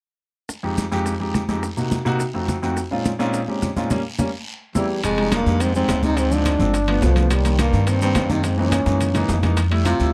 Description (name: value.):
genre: Afro-Cuban jazz.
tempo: 212 BPM.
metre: 4/4.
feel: straight.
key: F minor.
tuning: A4 = 440 Hz.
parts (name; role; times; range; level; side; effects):
bongos; percussion; 0.5-10.0 s; none; -32 LUFS; equal; none.
congas; percussion; 0.5-10.1 s; none; -30 LUFS; equal; none.
guiro; percussion; 0.5-10.1 s; none; -40 LUFS; equal; none.
maracas; percussion; 0.5-10.1 s; none; -40 LUFS; equal; none.
warm grand piano; accompaniment; 0.6-10.1 s; F2 to G4; -26 LUFS; equal; none.
mellow trombone; melody; 4.8-10.1 s; F3 to F4; -25 LUFS; equal; slapback echo.
breathy baritone saxophone; second line; 4.8-10.1 s; D2 to C3; -29 LUFS; equal; none.
upright bass; bass; 5.0-10.1 s; F1 to G2; -23 LUFS; equal; none.
timbales; percussion; 5.0-10.0 s; none; -31 LUFS; equal; none.
room: light reverb.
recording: dry, close 1970s-style studio recording.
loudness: -20 LUFS.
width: mono.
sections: 0.5-5.0 A section; 5.0-10.1 B section.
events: band accent 3.9-5.0; drum fill 8.7-9.6.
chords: 0.5 Fm7; 1.6 Cm7b5; 2.2 F7b9; 2.8 Bbm11; 3.9 Gdim; 4.5 C7; 5.0 Fm9; 6.2 Dm7b5; 6.7 G7; 7.3 Cm7; 8.4 Gb13; 9.6 Fmaj7.